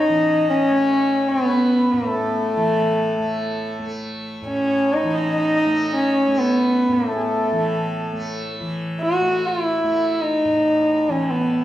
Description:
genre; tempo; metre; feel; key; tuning
indian classical, Hindustani; free time; none; none; A raga yaman; A4 = 440 Hz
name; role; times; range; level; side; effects
warm sarangi; melody; 0.0-11.6 s; A3 to F#4; -18 LUFS; equal; none
hand-pumped harmonium; second line; 0.0-8.5 s; G#4 to D#5; -28 LUFS; equal; none
tanpura; drone; 0.0-11.6 s; A2 to A3; -28 LUFS; equal; none
room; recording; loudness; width
wet recital hall reverb, RT60 1.7 s; recorded in a church or concert hall; -18 LUFS; side -13 dB against mid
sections
0.0-8.6 A section; 8.6-11.6 A section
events
none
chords
none

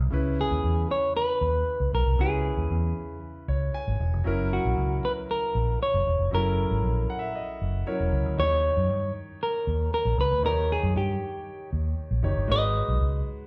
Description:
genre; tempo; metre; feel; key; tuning
disco; 116 BPM; 4/4; straight; unclear; A4 = 440 Hz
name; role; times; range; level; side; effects
clear grand piano; accompaniment; 0.0-13.5 s; C#3 to G#5; -36 LUFS; equal; none
vintage muted fingered electric bass; bass; 0.0-13.2 s; E1 to G2; -29 LUFS; equal; none
semi-hollow electric guitar; melody; 0.4-13.2 s; F#4 to D#5; -29 LUFS; equal; none
room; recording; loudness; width
wet large studio reverb, RT60 1.3 s; band playing live in one room; -26 LUFS; mono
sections
0.1-8.4 A section; 8.4-13.5 B section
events
grand piano fill 3.2-4.3, 6.8-8.4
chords
0.1 C#m7; 4.3 F#7; 8.4 D#7; 12.5 G#m7

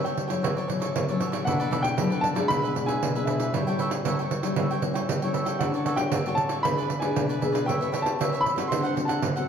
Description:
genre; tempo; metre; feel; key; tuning
samba and choro; 116 BPM; 4/4; straight; D major; A4 = 439 Hz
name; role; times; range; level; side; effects
warm baby grand piano; melody; 0.0-9.4 s; C#5 to C6; -29 LUFS; equal; none
cavaquinho; accompaniment; 0.0-9.5 s; D4 to G5; -32 LUFS; right 3 dB; none
nylon-string guitar; accompaniment; 0.0-9.5 s; A2 to B4; -28 LUFS; left 4 dB; none
pandeiro; percussion; 0.1-9.5 s; none; -28 LUFS; right 4 dB; none
room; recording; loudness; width
wet large studio reverb, RT60 1.5 s; heard from further back in the room; -23 LUFS; side -7 dB against mid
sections
0.0-9.5 A section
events
none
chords
0.4 Dmaj9/A; 1.5 Bm7; 2.5 E7/B; 3.5 A7; 5.6 Dmaj7; 6.6 E7; 7.7 A9; 8.7 D7

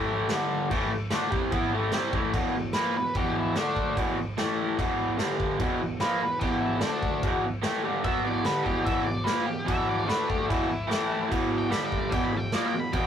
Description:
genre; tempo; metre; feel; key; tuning
garage rock duo or trio; 147 BPM; 4/4; straight; unclear; A4 = 440 Hz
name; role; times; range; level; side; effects
raw garage guitar; riff; 0.0-13.1 s; E2 to E4; -26 LUFS; equal; overdrive
raw garage drum kit; drums; 0.3-13.0 s; crash cymbal, kick drum, snare drum; -30 LUFS; equal; none
octave-fuzz lead guitar; melody; 2.7-13.1 s; D4 to B5; -32 LUFS; right 1 dB; distortion
room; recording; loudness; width
light reverb; rough rehearsal-room recording, warm saturation; -24 LUFS; side -9 dB against mid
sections
0.0-2.3 A section; 2.3-13.1 B section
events
lead electric guitar solo 2.3-13.1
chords
0.3 G5; 0.7 A5; 2.3 E5; 3.6 D5; 4.0 E5; 4.4 A5; 4.8 E5; 5.2 G5; 5.6 E5; 6.8 D5; 7.2 E5; 10.1 D5; 10.5 E5; 10.9 A5; 11.3 E5; 11.7 G5; 12.1 E5

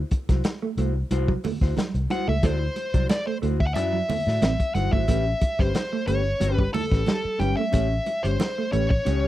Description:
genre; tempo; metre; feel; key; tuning
funk; 90 BPM; 4/4; straight; unclear; A4 = 440 Hz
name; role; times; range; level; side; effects
vintage muted fingered electric bass; bass; 0.0-9.3 s; G1 to A2; -25 LUFS; equal; none
mellow electric guitar; accompaniment; 0.1-9.3 s; C#4 to D5; -31 LUFS; left 4 dB; none
mellow electric guitar; riff; 0.1-9.3 s; F#3 to C4; -31 LUFS; right 6 dB; analog chorus
crunchy breakbeat drum kit; drums; 0.1-9.2 s; hi-hat, kick drum, snare drum; -24 LUFS; equal; none
congas; percussion; 0.4-9.2 s; none; -32 LUFS; right 5 dB; none
nasal lead guitar with a parked wah; melody; 2.1-9.3 s; A4 to G5; -27 LUFS; equal; overdrive
room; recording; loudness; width
small room reverb; dry, close 1970s-style studio recording; -21 LUFS; side -14 dB against mid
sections
0.0-9.3 A section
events
none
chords
0.0 D9; 5.1 A9

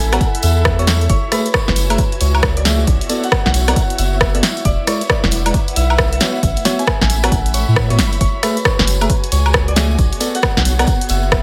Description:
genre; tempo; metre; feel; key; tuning
UK garage, two-step garage; 135 BPM; 4/4; swing 63% on 16ths; F# minor; A4 = 445 Hz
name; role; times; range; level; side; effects
Celtic harp; melody; 0.0-11.4 s; B4 to G#5; -26 LUFS; equal; tape echo
soft string machine; sustained chords; 0.0-11.4 s; E4 to G#5; -35 LUFS; equal; none
soft dub sub bass; bass; 0.0-11.4 s; E1 to A2; -19 LUFS; equal; sidechain pumping
warm symphonic string section; texture; 0.0-11.4 s; A3 to B5; -30 LUFS; equal; sidechain pumping
bell-like tine electric piano; stabs; 0.1-10.9 s; G#3 to E5; -26 LUFS; equal; none
house drum kit; drums; 0.1-11.4 s; hi-hat, rim click, snare drum, woodblock; -20 LUFS; equal; none
tambourine; percussion; 0.1-11.4 s; none; -31 LUFS; equal; none
electronic kick drum; drums; 0.2-11.4 s; none; -21 LUFS; equal; none
room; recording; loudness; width
little or no reverb; none; -15 LUFS; mono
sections
0.0-11.4 A section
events
none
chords
0.0 A69; 1.1 F#m9; 2.9 Bm7; 4.4 E7(no3); 6.2 A69; 8.2 F#m9; 10.0 Bm7

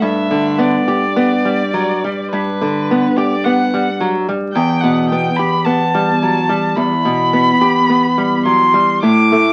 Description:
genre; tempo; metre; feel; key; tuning
romantic duo for violin and classical guitar; 53 BPM; 4/4; rubato; unclear; A4 = 443 Hz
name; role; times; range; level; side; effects
rich violin; melody; 0.0-9.5 s; B4 to D6; -19 LUFS; equal; none
nylon-string guitar; accompaniment; 0.0-9.5 s; E2 to G4; -17 LUFS; equal; none
room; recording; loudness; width
moderate studio reverb, RT60 0.6 s; very old 78 rpm record, vinyl crackle; -15 LUFS; mono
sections
0.0-9.5 A section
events
none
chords
0.0 G; 4.5 Em

